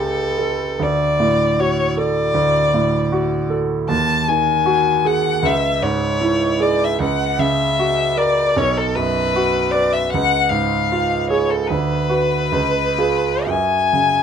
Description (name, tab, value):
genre	classical, romantic duo for violin and grand piano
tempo	77 BPM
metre	4/4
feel	rubato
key	unclear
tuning	A4 = 444 Hz
part	rich violin	melody	0.0-14.2 s	A4 to A5	-18 LUFS	left 4 dB	none
part	bright concert grand piano	accompaniment	0.0-14.2 s	B1 to B4	-19 LUFS	right 3 dB	none
room	moderate studio reverb, RT60 0.7 s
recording	dark, warm production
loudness	-16 LUFS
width	side -8 dB against mid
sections	0.0-14.2 A section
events	none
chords	0.0 A7/C#; 0.8 D; 3.9 G#5/D#; 5.5 C#m; 7.0 F#7/C#; 8.6 B5; 10.1 C#; 11.7 Bm/D; 12.5 C#7; 13.5 F#5